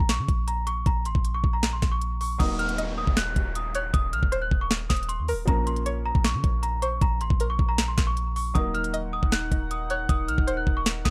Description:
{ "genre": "hip hop, trap", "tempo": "156 BPM", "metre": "4/4", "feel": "half-time", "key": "unclear", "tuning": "A4 = 443 Hz", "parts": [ { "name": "worn celesta", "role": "melody", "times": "0.0-11.1 s", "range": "Bb5 to Gb6", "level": "-32 LUFS", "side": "equal", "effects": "tape echo" }, { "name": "clean 808-style bass", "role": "bass", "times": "0.0-11.1 s", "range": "Eb1 to Db3", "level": "-31 LUFS", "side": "equal", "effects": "none" }, { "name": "trap drum kit", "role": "drums", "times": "0.0-11.1 s", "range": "crash cymbal, hi-hat, kick drum, snare drum", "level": "-27 LUFS", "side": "equal", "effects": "none" }, { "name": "felt-muted upright piano", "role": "accompaniment", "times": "2.4-11.1 s", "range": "F3 to Bb4", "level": "-38 LUFS", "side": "equal", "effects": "none" }, { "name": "downlifter", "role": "sound effects", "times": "2.4-5.5 s", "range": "none", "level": "-41 LUFS", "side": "equal", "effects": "none" }, { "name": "string-like resonator pluck", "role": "second line", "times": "2.8-10.8 s", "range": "Bb4 to Eb5", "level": "-34 LUFS", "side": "equal", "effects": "chorus, tape echo" }, { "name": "warm analog pad", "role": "sustained chords", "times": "8.6-11.1 s", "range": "Eb4 to Gb5", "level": "-38 LUFS", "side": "equal", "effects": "chorus" } ], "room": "digital ambience", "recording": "dry, gritty hardware recording", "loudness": "-25 LUFS", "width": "mono", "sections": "0.0-2.4 A section; 2.4-11.1 B section", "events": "break 0.0-2.4", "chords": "0.0 Bbm; 2.4 Ebm; 5.5 Bbm; 8.6 Ebm", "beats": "0.09 0.48 | 0.86 1.25 1.63 2.02 | 2.40 2.78 3.17 3.55 | 3.94 4.32 4.71 5.09 | 5.48 5.86 6.25 6.63 | 7.01 7.40 7.78 8.17 | 8.55 8.94 9.32 9.71 | 10.09 10.48 10.86" }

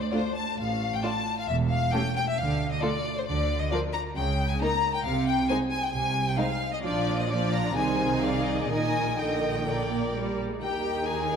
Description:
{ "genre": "quick classical-period movement for string orchestra", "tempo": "133 BPM", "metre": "4/4", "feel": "rubato", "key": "Eb major from 3.3 s", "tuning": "A4 = 441 Hz", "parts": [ { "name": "clear chamber violin section", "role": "melody", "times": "0.0-11.4 s", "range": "C5 to Bb5", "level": "-29 LUFS", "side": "left 4 dB", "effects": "none" }, { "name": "rich chamber double bass section", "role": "bass", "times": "0.0-11.4 s", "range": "E1 to Eb2", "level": "-32 LUFS", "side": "right 3 dB", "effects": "none" }, { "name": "rich studio cello section", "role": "bass", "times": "0.0-11.4 s", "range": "Eb2 to D3", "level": "-32 LUFS", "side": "right 3 dB", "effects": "none" }, { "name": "rich chamber violin section", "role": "second line", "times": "0.1-11.4 s", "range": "Eb4 to Eb5", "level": "-33 LUFS", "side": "left 2 dB", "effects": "none" }, { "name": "rich symphonic viola section", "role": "accompaniment", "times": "0.1-11.4 s", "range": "D3 to Ab4", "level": "-31 LUFS", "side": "right 1 dB", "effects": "none" } ], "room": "wet concert hall reverb, RT60 1.9 s", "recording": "dark, warm production", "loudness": "-24 LUFS", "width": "side -7 dB against mid", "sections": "0.0-10.6 A section", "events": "none", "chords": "0.0 Dm (rootless); 1.5 A7(no3)/E (rootless); 2.4 Dm; 3.3 N.C.; 5.1 Ab/C; 6.8 Bb; 7.8 Ab/C; 8.7 Eb/Bb; 9.7 Bb; 10.6 Eb", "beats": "0.13 0.58 1.04 | 1.49 1.94 2.38 2.83 | 3.27 3.72 4.17 4.61 | 5.06 5.50 5.94 6.39 | 6.84 7.29 7.75 8.22 | 8.70 9.19 9.67 10.15 | 10.62 11.07" }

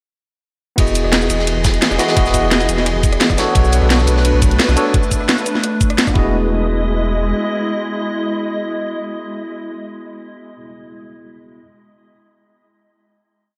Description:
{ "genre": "liquid drum and bass", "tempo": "173 BPM", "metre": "4/4", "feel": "straight", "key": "E major", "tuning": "A4 = 440 Hz", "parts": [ { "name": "tine electric piano", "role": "accompaniment", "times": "0.8-11.6 s", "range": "B3 to D#5", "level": "-24 LUFS", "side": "equal", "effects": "analog delay" }, { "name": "glassy FM pad", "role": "sustained chords", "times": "0.8-9.9 s", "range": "E3 to D#5", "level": "-24 LUFS", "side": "equal", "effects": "ensemble chorus, built-in reverb, sidechain pumping" }, { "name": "warm sub bass", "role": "bass", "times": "0.8-7.3 s", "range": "E1 to B1", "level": "-20 LUFS", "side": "equal", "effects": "none" }, { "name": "crunchy breakbeat drum kit", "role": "drums", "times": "0.8-4.9 s", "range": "ride cymbal, snare drum", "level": "-27 LUFS", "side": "equal", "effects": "high-pass filter on cymbals, high-pass filter on snare, high-pass filter on room" }, { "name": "drum and bass drum kit", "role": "drums", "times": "0.8-6.1 s", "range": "hi-hat, rim click, shaker, snare drum", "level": "-20 LUFS", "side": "equal", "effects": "none" }, { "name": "electronic kick drum", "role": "drums", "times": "0.8-6.2 s", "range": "none", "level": "-18 LUFS", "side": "equal", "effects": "none" } ], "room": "moderate lush hall reverb, RT60 1.7 s, digital ambience", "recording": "dreamy mix soaked in reverb", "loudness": "-16 LUFS", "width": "mono", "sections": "0.8-6.3 drop; 6.3-9.1 final hit", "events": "drop 0.8-6.3", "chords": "0.8 Emaj7; 3.4 Bm7; 6.2 Emaj7", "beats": "| 0.78 1.13 1.47 1.82 | 2.17 2.51 2.86 3.21 | 3.55 3.90 4.25 4.59 | 4.94 5.29 5.63 5.98 | 6.33 6.68 7.02 7.37 | 7.72 8.06 8.41 8.76" }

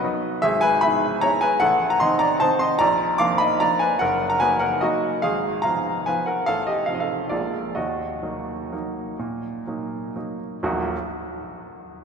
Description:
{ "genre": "classical, piano waltz", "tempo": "120-158 BPM", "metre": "3/4", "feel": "rubato", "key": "Eb minor", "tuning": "A4 = 439 Hz", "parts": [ { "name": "clear baby grand piano", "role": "solo", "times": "0.0-11.0 s", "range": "Eb1 to D6", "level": "-20 LUFS", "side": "equal", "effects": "none" } ], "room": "wet cathedral reverb, RT60 4.4 s", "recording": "recorded in a church or concert hall", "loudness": "-20 LUFS", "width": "side -6 dB against mid", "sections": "0.0-10.6 A section; 10.6-12.0 B section", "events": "slowing down 7.1-10.6", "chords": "0.4 E/G#; 1.6 Adim; 2.8 Bb; 4.0 Ebm/Gb; 5.2 Fdim/Ab; 6.5 F/A; 7.3 Bb7; 7.8 Ebm", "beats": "0.04 | 0.43 0.82 1.22 | 1.61 2.01 2.41 | 2.80 3.19 3.60 | 4.01 4.41 4.82 | 5.23 5.64 6.07 | 6.47 6.88 7.31 | 7.76 8.23 8.73 | 9.20 9.66 10.15 | 10.62" }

